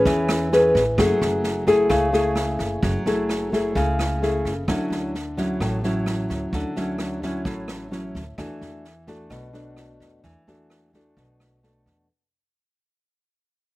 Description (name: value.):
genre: bossa nova.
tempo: 130 BPM.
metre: 4/4.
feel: straight.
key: unclear.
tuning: A4 = 442 Hz.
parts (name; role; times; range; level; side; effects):
nylon-string guitar; accompaniment; 0.0-12.1 s; A2 to B4; -21 LUFS; left 1 dB; slapback echo.
upright bass; bass; 0.1-12.1 s; F#1 to E2; -29 LUFS; right 1 dB; none.
swinging big-band drum kit; drums; 0.1-11.9 s; kick drum, rim click, snare drum; -30 LUFS; right 1 dB; none.
room: little or no reverb.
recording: recorded outdoors, with no room sound.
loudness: -20 LUFS.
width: side -18 dB against mid.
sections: 0.0-12.1 A section.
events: fade-out 0.2-12.1.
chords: 0.0 Amaj9; 1.0 F#m9; 4.7 Dmaj9; 8.4 E9sus4.